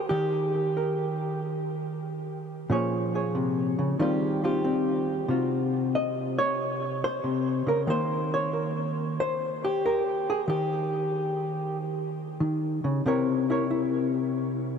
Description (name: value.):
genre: solo jazz.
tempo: 93 BPM.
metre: 4/4.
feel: swing 68% on 8ths.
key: Eb mixolydian.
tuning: A4 = 440 Hz.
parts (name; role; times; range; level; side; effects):
hollow-body jazz guitar; solo; 0.0-14.8 s; Bb2 to Eb5; -25 LUFS; equal; diffuse ambient delay.
room: wet huge ambient reverb, RT60 7.3 s.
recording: dreamy mix soaked in reverb.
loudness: -25 LUFS.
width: side -6 dB against mid.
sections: 0.0-14.8 A section.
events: none.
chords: 0.0 Eb; 2.7 Bbm7; 4.0 Eb69; 5.3 Ebm13/C; 7.9 Eb6; 13.0 C7b9.